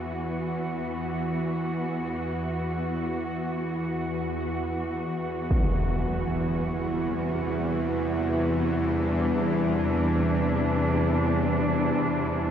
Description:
dark ambient drone; free time; A4 = 440 Hz
muted chamber cello section; sustained chords; 0.0-12.5 s; E2 to F#4; -28 LUFS; equal
bowed-like drone; drone; 0.0-12.5 s; E2 to E3; -27 LUFS; equal; built-in reverb
impact; percussion; 5.5-5.7 s; -28 LUFS; equal; low-pass filter on sfx
wet huge ambient reverb, RT60 7.7 s; -24 LUFS; side -9 dB against mid
0.0-12.5 A section
fade-in on synth drone 0.0-12.5; fade-in on cello section 0.0-12.5
0.0 E5; 5.5 C/E

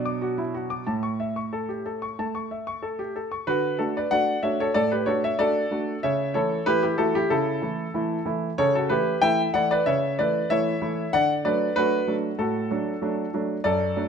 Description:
classical-period piano sonatina; 94 BPM; 4/4; straight; D major; A4 = 442 Hz
clear grand piano; solo; 0.0-14.1 s; F#2 to D6; -22 LUFS; equal
light reverb; close, detailed microphones; -22 LUFS; side -6 dB against mid
0.0-3.5 A section; 3.5-14.1 B section
0.0 Bm; 0.9 A; 3.5 D; 6.0 A/C#; 8.6 A7/C#; 11.1 D

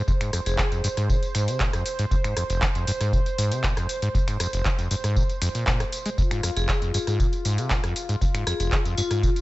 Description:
acid house; 118 BPM; 4/4; straight; F minor; A4 = 440 Hz
warm analog pad; sustained chords; 0.0-9.4 s; F4 to C5; -32 LUFS; equal; chorus, sidechain pumping
acid bass, saw; riff; 0.0-9.3 s; F1 to Ab3; -26 LUFS; equal; cassette tape
electro analog drum machine; drums; 0.1-9.4 s; finger snaps, handclaps, hi-hat, rim click, tambourine; -30 LUFS; equal; studio ambience
electronic kick drum; drums; 0.1-9.3 s; -24 LUFS; equal; studio ambience
vibraphone with hard mallets; melody; 0.5-0.7, 6.6-9.4 s; F4 to Ab4; -34 LUFS; left 2 dB; tape echo
little or no reverb; nothing above 7.9 kHz; -22 LUFS; side -18 dB against mid
0.0-9.4 A section
0.0 Fm

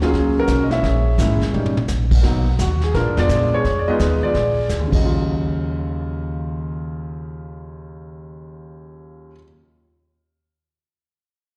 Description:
jazz piano trio; 171 BPM; 4/4; swing 65% on 8ths; Eb minor; A4 = 441 Hz
warm grand piano; melody; 0.0-9.4 s; Eb2 to Fb5; -24 LUFS; equal; slapback echo
upright bass; bass; 0.0-9.3 s; G1 to Bb2; -24 LUFS; equal
vintage brush drum kit; drums; 0.0-5.0 s; brushed snare drum, crash cymbal, hi-hat, kick drum, snare drum, toms; -25 LUFS; equal
light reverb; live gig heard through the venue's PA, recital hall reverb; -19 LUFS; mono
0.0-2.2 A section; 2.2-5.1 B section; 5.1-7.9 C section
drum fill 1.5-1.9
0.0 Ebm9 (rootless); 0.8 Bbm7b5; 1.5 Eb7; 2.2 B; 2.9 Bb7b9; 3.6 Fm7b5; 4.3 Bb7; 4.9 Ebm7; 5.1 Ebm9

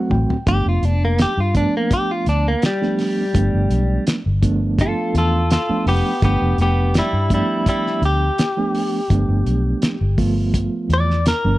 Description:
straight-eighth soul blues; 83 BPM; 4/4; swing 54% on 16ths; G mixolydian; A4 = 439 Hz
mellow reed electric piano; accompaniment; 0.0-11.6 s; F3 to G5; -22 LUFS; right 3 dB; fast tremolo
vintage muted fingered electric bass; bass; 0.1-11.6 s; F1 to G2; -18 LUFS; equal
cloth-damped thuddy drum kit; drums; 0.1-11.4 s; hi-hat, kick drum, snare drum, toms; -21 LUFS; equal
direct-recorded clean electric guitar; melody; 0.5-11.6 s; G3 to D5; -21 LUFS; left 1 dB
studio reverb; dry, close 1970s-style studio recording; -16 LUFS; side -17 dB against mid
0.5-11.6 A section
reed electric piano fill 0.0-0.5; drum fill 0.0-0.5; clean electric guitar solo 0.5-11.6
0.5 G9

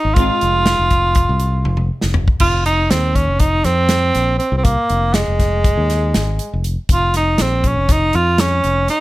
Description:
progressive instrumental, band music in an uneven meter; 241 BPM (eighths); 9/8; straight; F minor; A4 = 440 Hz
clear tenor saxophone; melody; 0.0-9.0 s; Ab3 to F4; -17 LUFS; right 1 dB
archtop guitar, miked and amplified; accompaniment; 0.0-2.4 s; Ab3 to F4; -25 LUFS; left 1 dB; double-tracked left and right
fingered electric bass; bass; 0.0-8.9 s; F1 to F2; -18 LUFS; equal
natural country drum kit; drums; 0.2-9.0 s; crash cymbal, hi-hat, kick drum, snare drum, toms; -18 LUFS; equal
light reverb; -13 LUFS; side -17 dB against mid
0.0-2.4 A section; 2.4-9.0 B section
drum fill 1.7-2.4
0.0 Fm7; 6.9 Db/F

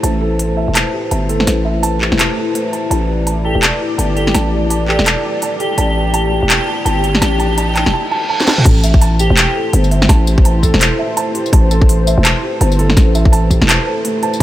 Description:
half-time drum and bass; 167 BPM; 4/4; swing 60% on 16ths, half-time; A minor; A4 = 441 Hz
dark analog pad; sustained chords; 0.0-14.4 s; A3 to D5; -21 LUFS; left 2 dB; chorus, phaser, sidechain pumping
felt-muted upright piano; arpeggios; 0.0-14.4 s; A3 to A5; -20 LUFS; right 2 dB; tape echo
growling 808-style bass; bass; 0.0-14.4 s; E1 to A1; -15 LUFS; equal
drum and bass drum kit; drums; 0.0-14.4 s; crash cymbal, handclaps, hi-hat, snare drum, tambourine, toms; -17 LUFS; equal
riser and reverse cymbal; sound effects; 5.4-8.7 s; -26 LUFS; right 1 dB
airy dreamy lead; melody; 3.4-9.7 s; G4; -22 LUFS; equal; chorus, tape echo
electronic kick drum; drums; 8.7-14.4 s; -10 LUFS; equal
light reverb; -11 LUFS; side -14 dB against mid
0.0-8.7 A section; 8.7-14.4 B section
build-up 0.0-8.7; riser 5.4-7.9; reverse cymbal 7.9-8.7; drum fill 8.4; drop 8.7-14.4
0.0 Am

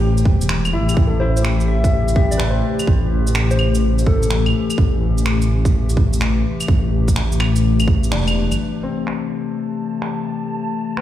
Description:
future garage; 126 BPM; 4/4; swing 67% on 16ths; A minor; A4 = 444 Hz
clear upright piano; accompaniment; 0.0-11.0 s; B3 to C5; -29 LUFS; left 1 dB; sidechain pumping, tape echo
warbly tape-like pad; sustained chords; 0.0-11.0 s; C3 to A4; -23 LUFS; left 5 dB; chorus, built-in reverb, sidechain pumping
dark detuned saw bass; bass; 0.0-8.6 s; E1 to A1; -18 LUFS; equal; sidechain pumping
electronic shaker, finger snaps and claves; drums; 0.2-11.0 s; -25 LUFS; right 2 dB; low-pass filter on perc, low-pass filter on snare, low-pass filter on room
electronic kick drum; drums; 0.3-8.0 s; -15 LUFS; right 1 dB
soft struck synth lead; melody; 1.2-4.5 s; A4 to E5; -26 LUFS; left 2 dB; chorus, ping-pong delay
wind-like tuned noise texture; texture; 9.2-11.0 s; A5; -32 LUFS; right 4 dB; built-in reverb
light reverb, digital ambience; played on a big sound system in a bare room, large studio reverb; -15 LUFS; side -12 dB against mid
0.0-8.6 A section; 8.6-11.0 B section
band accent 8.1
0.0 Am7

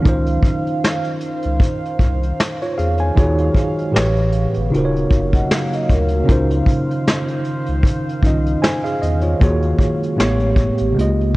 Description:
lo-fi hip hop; 77 BPM; 4/4; swing 56% on 16ths; Db major; A4 = 440 Hz
mellow tine electric piano; accompaniment; 0.0-11.4 s; A2 to Ab5; -19 LUFS; right 1 dB; medium stereo tremolo, cassette tape, low-pass filter
warbly tape-like pad; sustained chords; 0.0-11.4 s; Db3 to F5; -27 LUFS; right 1 dB; chorus, built-in reverb, phaser, low-pass filter
warm sub bass; bass; 0.1-11.4 s; Eb1 to Fb2; -20 LUFS; equal
vintage brush drum kit; drums; 0.1-11.4 s; hi-hat, kick drum, snare drum; -17 LUFS; equal
vibraphone with soft mallets; second line; 5.3-6.5 s; Gb4 to Gb5; -26 LUFS; left 1 dB; low-pass filter, analog delay
light reverb, small room ambience; worn, warbling old tape, cassette tape, warbly pitch drift; -15 LUFS; side -20 dB against mid
0.0-11.4 A section
0.1 Dbmaj9; 3.2 Ebm11; 4.0 A9; 4.7 Ebm9; 6.3 Dbmaj9; 9.4 Ebm11; 10.2 A9

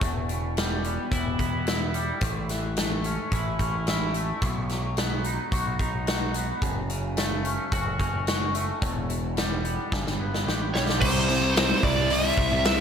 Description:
quiet-loud alternative rock; 109 BPM; 4/4; straight; A mixolydian; A4 = 440 Hz
twangy electric guitar; arpeggios; 0.0-11.0 s; E2 to G4; -30 LUFS; left 1 dB; analog chorus, slapback echo, digital delay
growling picked electric bass; bass; 0.0-12.8 s; E1 to C2; -30 LUFS; equal; overdrive
big rock drum kit; drums; 0.0-12.8 s; crash cymbal, hi-hat, kick drum, snare drum; -28 LUFS; equal
biting lead guitar; melody; 10.7-12.8 s; C5 to E5; -24 LUFS; right 1 dB; overdrive, slapback echo
thick fuzz guitar; riff; 11.0-12.8 s; C3 to E4; -25 LUFS; equal; distortion, slapback echo
moderate lush hall reverb, RT60 1.8 s, small room ambience; big arena sound; -23 LUFS; side -7 dB against mid
0.0-11.0 A section; 11.0-12.8 B section
drum fill 9.9-11.0
0.0 Em; 2.2 A; 4.4 B; 6.6 F#m; 8.8 Em; 9.9 G; 11.0 C

